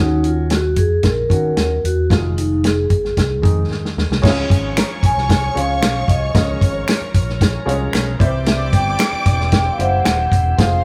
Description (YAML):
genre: uptempo 1960s-style soul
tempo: 113 BPM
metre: 4/4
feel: straight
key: Db major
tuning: A4 = 440 Hz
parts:
  - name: vibraphone with soft mallets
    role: melody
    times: 0.0-10.8 s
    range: Eb4 to Bb5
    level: -23 LUFS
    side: equal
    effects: none
  - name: clear concert grand piano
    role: accompaniment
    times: 0.0-10.8 s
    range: Eb3 to Eb5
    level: -26 LUFS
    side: equal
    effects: none
  - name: fingered electric bass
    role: bass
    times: 0.0-10.8 s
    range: Eb1 to Eb3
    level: -23 LUFS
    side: equal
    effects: none
  - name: warm soul drum kit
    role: drums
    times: 0.2-10.7 s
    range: crash cymbal, hi-hat, kick drum, snare drum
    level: -19 LUFS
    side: equal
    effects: none
  - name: warm studio string section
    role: second line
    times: 4.2-10.8 s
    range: C5 to D6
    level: -30 LUFS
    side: equal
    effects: none
  - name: bright tonewheel organ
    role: sustained chords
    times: 4.2-10.8 s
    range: E3 to Bb4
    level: -33 LUFS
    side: equal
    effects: overdrive, slow rotary speaker
  - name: finger snap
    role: percussion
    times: 4.8-10.2 s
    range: none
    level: -30 LUFS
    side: equal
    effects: none
room: moderate large studio reverb, RT60 1.3 s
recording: band playing live in one room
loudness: -17 LUFS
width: mono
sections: 0.0-4.2 A section; 4.2-10.8 B section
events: drum fill 3.7-4.2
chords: 0.0 Ebm7; 2.1 Fm7; 4.2 Db; 8.2 C